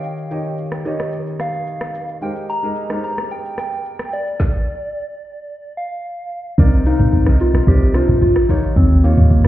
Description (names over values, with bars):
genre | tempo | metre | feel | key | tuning
amapiano | 110 BPM | 4/4 | straight | C minor | A4 = 440 Hz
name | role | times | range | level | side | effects
soft struck synth lead | melody | 0.0-9.5 s | Bb3 to Bb5 | -22 LUFS | left 1 dB | chorus, ping-pong delay
warm concert grand piano | accompaniment | 0.0-9.5 s | C3 to F5 | -23 LUFS | equal | none
afro-pop drum kit | drums | 0.0-9.5 s | hi-hat, kick drum, rim click, shaker, snare drum, toms | -17 LUFS | equal | none
deep log drum bass | bass | 6.6-9.5 s | Bb1 to Eb2 | -14 LUFS | equal | none
room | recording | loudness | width
digital ambience | heard muffled through a wall, stone room reverb, EQ | -15 LUFS | side -14 dB against mid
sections
0.0-6.6 A section; 6.6-9.5 B section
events
none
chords
0.0 Eb7; 2.2 Abmaj9; 4.4 N.C.; 6.6 Cm9; 8.5 Eb7